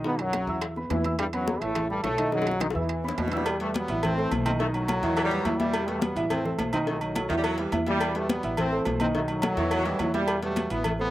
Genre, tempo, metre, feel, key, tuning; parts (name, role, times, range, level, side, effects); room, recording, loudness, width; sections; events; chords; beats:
latin, salsa; 211 BPM; 4/4; straight; E harmonic minor; A4 = 440 Hz
bright trombone section; melody; 0.0-3.3 s; F#2 to E4; -28 LUFS; equal
dark grand piano; accompaniment; 0.0-11.1 s; D#3 to E6; -30 LUFS; right 2 dB; slapback echo
upright bass; bass; 0.0-11.1 s; A1 to E2; -34 LUFS; equal
bongos and cowbell; percussion; 0.0-11.0 s; -36 LUFS; left 5 dB
congas; percussion; 0.1-11.1 s; -31 LUFS; left 2 dB
timbales and agogo bells; percussion; 0.2-11.0 s; -34 LUFS; right 3 dB
clear saxophone section; second line; 3.0-10.1 s; A2 to G3; -31 LUFS; equal
brilliant trombone section; melody; 3.3-11.1 s; A2 to C4; -29 LUFS; equal; slapback echo
little or no reverb; recorded outdoors, with no room sound; -24 LUFS; side -15 dB against mid
0.0-3.5 A section; 3.5-11.1 B section
drum fill 2.3-3.5
0.1 B; 0.6 Esus2; 1.8 A5; 2.3 B; 2.9 E5; 3.5 Emadd9; 4.0 Am; 4.6 B7; 5.2 Emadd9; 6.3 Am; 6.9 B7; 7.4 Emadd9; 8.6 Am; 9.1 B7; 9.7 Emadd9
| 0.05 0.34 0.62 0.91 | 1.19 1.47 1.76 2.04 | 2.33 2.61 2.90 3.18 | 3.46 3.75 4.03 4.32 | 4.60 4.89 5.17 5.45 | 5.74 6.02 6.31 6.59 | 6.87 7.16 7.44 7.73 | 8.01 8.29 8.58 8.86 | 9.15 9.43 9.71 10.00 | 10.28 10.57 10.85